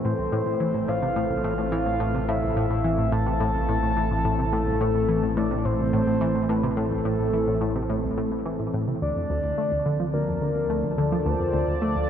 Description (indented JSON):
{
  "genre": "ambient, sequencer-driven space music",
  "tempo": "107 BPM",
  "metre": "4/4",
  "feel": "straight",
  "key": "A minor, D minor from 9.0 s",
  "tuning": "A4 = 440 Hz",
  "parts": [
    { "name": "soft octave-layered synth lead", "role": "melody", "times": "0.0-12.1 s", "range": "A4 to A5", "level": "-27 LUFS", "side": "left 1 dB", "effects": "chorus, analog delay" },
    { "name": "sweeping resonant pad", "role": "sustained chords", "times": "0.0-12.1 s", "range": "A2 to A5", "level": "-28 LUFS", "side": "right 1 dB", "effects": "chorus" },
    { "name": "tight sequenced synth", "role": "riff", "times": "0.0-12.1 s", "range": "C2 to A3", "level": "-27 LUFS", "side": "left 1 dB", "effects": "chorus, cassette tape, analog delay" },
    { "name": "fat analog bass", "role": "bass", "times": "0.0-12.1 s", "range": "A1 to D2", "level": "-31 LUFS", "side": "equal", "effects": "tube saturation" },
    { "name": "bubbling stepped-filter texture", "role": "texture", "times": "9.8-12.1 s", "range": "C4 to C5", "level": "-50 LUFS", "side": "left 3 dB", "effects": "none" }
  ],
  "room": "wet huge ambient reverb, RT60 8.6 s",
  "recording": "none",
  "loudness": "-22 LUFS",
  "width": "side -9 dB against mid",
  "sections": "0.0-9.0 A section; 9.0-12.1 B section",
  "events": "none",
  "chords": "0.0 Am; 9.0 Dm"
}